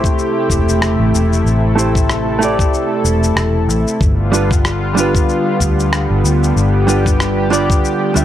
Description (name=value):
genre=sunset chillout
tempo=94 BPM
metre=4/4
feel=swing 57% on 16ths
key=A minor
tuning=A4 = 440 Hz
part: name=vintage hollow-body jazz guitar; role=accompaniment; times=0.0-8.2 s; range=G3 to E5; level=-18 LUFS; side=right 2 dB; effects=auto-pan, low-pass filter, tape echo
part: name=lush unison pad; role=sustained chords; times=0.0-8.2 s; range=C3 to A4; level=-18 LUFS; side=left 1 dB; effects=chorus
part: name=vintage muted fingered electric bass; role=bass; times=0.0-8.2 s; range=E1 to D2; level=-16 LUFS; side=equal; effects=tube saturation
part: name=electronic cabasa and rim click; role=drums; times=0.0-8.2 s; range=none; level=-21 LUFS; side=left 2 dB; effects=none
part: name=electronic kick drum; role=drums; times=0.0-7.8 s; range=none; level=-16 LUFS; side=equal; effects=none
room=little or no reverb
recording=dry, gritty hardware recording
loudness=-12 LUFS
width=side -11 dB against mid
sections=0.0-8.2 A section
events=filter sweep on hollow-body jazz guitar 0.0-8.2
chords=0.0 Am7; 4.0 G7